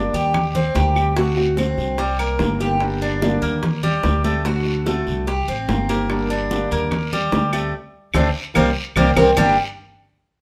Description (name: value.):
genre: latin, Cuban son and guajira.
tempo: 146 BPM.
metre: 4/4.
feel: straight.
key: G harmonic minor.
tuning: A4 = 443 Hz.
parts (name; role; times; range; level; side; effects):
nylon-string guitar; accompaniment; 0.0-9.5 s; G2 to G4; -27 LUFS; equal; none.
Cuban tres; arpeggios; 0.0-9.6 s; G3 to G4; -23 LUFS; equal; none.
upright bass; bass; 0.0-9.6 s; G1 to Eb2; -25 LUFS; equal; none.
congas; percussion; 0.1-9.5 s; none; -28 LUFS; equal; none.
guiro; percussion; 0.1-9.5 s; none; -37 LUFS; equal; none.
bongos; percussion; 0.3-9.5 s; none; -30 LUFS; equal; none.
claves; percussion; 0.3-2.4, 6.1-9.5 s; none; -31 LUFS; equal; none.
room: moderate studio reverb, RT60 0.8 s.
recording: none.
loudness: -20 LUFS.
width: mono.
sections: 0.0-2.8 A section; 2.8-9.4 B section; 9.4-10.4 C section.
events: band accent 7.7-9.4; drum fill 8.6-9.4.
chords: 0.3 Eb6; 1.2 D7; 2.0 Cm7; 2.8 Gm; 3.6 Eb6; 4.5 D7; 5.3 Cm7; 6.1 Gm; 6.9 Eb6; 7.7 D5; 8.6 C5; 9.4 Gm.